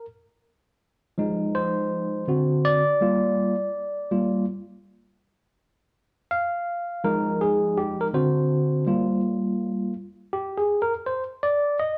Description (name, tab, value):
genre	hip hop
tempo	82 BPM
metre	4/4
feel	swing 64% on 16ths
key	unclear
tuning	A4 = 437 Hz
part	tine electric piano	solo	0.0-12.0 s	D3 to F5	-24 LUFS	equal	none
room	wet large studio reverb, RT60 1.0 s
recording	band playing live in one room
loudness	-25 LUFS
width	mono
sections	0.0-12.0 A section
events	tine electric piano solo 0.0-12.0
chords	0.1 Fm7; 2.3 D7; 3.0 Gm7; 5.9 Fm7; 8.1 D7; 8.9 Gm7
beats	| 0.09 0.82 1.56 2.29 | 3.02 3.75 4.48 5.21 | 5.95 6.68 7.41 8.14 | 8.87 9.61 10.34 11.07 | 11.80